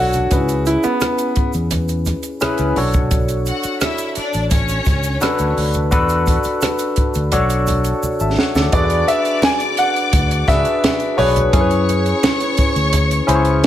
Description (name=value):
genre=lush 1970s-style soul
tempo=86 BPM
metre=4/4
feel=straight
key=B dorian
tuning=A4 = 440 Hz
part: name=clear grand piano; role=melody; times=0.0-1.5, 8.7-13.7 s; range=B3 to G#5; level=-19 LUFS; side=equal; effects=slapback echo
part: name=barky tine electric piano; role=accompaniment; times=0.0-13.7 s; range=C#4 to A5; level=-20 LUFS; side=left 2 dB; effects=analog chorus
part: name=fingered electric bass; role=bass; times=0.0-13.7 s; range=G#1 to F#2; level=-20 LUFS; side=equal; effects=none
part: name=compact cocktail drum kit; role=drums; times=0.1-13.7 s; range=hi-hat, kick drum, rim click, snare drum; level=-19 LUFS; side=right 1 dB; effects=none
part: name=congas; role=percussion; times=0.1-13.7 s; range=none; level=-27 LUFS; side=right 1 dB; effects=none
part: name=egg shaker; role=percussion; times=0.1-8.7 s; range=none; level=-34 LUFS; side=right 6 dB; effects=none
part: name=rich studio string section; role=second line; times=3.5-13.7 s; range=C#4 to D6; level=-23 LUFS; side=left 2 dB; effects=slapback echo
room=light reverb, small room ambience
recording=none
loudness=-14 LUFS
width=side -12 dB against mid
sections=0.0-8.7 A section; 8.7-13.7 B section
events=drum fill 8.0-8.7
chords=0.3 C#m7; 2.8 Bm9; 5.9 E7sus4; 7.3 Bm7; 8.7 E7; 11.5 F#7sus4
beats=| 0.31 1.01 1.71 2.41 | 3.11 3.81 4.51 5.22 | 5.92 6.62 7.32 8.02 | 8.72 9.43 10.13 10.83 | 11.53 12.23 12.93 13.63